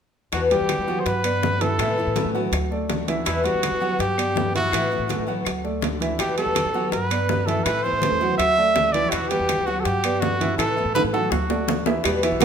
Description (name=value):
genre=latin, Cuban son and guajira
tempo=164 BPM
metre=4/4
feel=straight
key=E minor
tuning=A4 = 440 Hz
part: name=warm trumpet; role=melody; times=0.3-12.4 s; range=E4 to E5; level=-23 LUFS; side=right 1 dB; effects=none
part: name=picked steel-string acoustic guitar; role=accompaniment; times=0.3-12.4 s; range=B2 to F#4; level=-27 LUFS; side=left 5 dB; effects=none
part: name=upright bass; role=bass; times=0.3-12.4 s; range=B1 to E3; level=-30 LUFS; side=left 1 dB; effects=none
part: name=bongos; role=percussion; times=0.3-12.4 s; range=none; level=-32 LUFS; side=left 9 dB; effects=none
part: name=claves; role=percussion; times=0.3-12.4 s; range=none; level=-36 LUFS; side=left 6 dB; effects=none
part: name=congas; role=percussion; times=0.3-12.4 s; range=none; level=-32 LUFS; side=left 3 dB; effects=none
part: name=timbales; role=percussion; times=0.3-12.4 s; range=none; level=-30 LUFS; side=right 8 dB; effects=none
part: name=warm grand piano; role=arpeggios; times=0.5-12.4 s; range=E3 to F#5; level=-26 LUFS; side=right 3 dB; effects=none
part: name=nylon-string guitar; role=second line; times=12.4 s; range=B3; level=-12 LUFS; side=right 10 dB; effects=none
room=wet large studio reverb, RT60 1.3 s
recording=minimal, uncompressed stereo recording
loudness=-20 LUFS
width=side -7 dB against mid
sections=0.3-12.0 A section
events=drum fill 11.0-12.0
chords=0.3 Emadd9; 1.1 Gmaj7; 1.8 Amadd9; 2.5 D; 3.3 Emadd9; 4.0 Gmaj7; 4.7 Amadd9; 5.5 D; 6.2 Emadd9; 6.9 Gmaj7; 7.7 Amadd9; 8.4 D; 9.1 Emadd9; 9.9 Gmaj7; 10.6 Amadd9; 11.3 D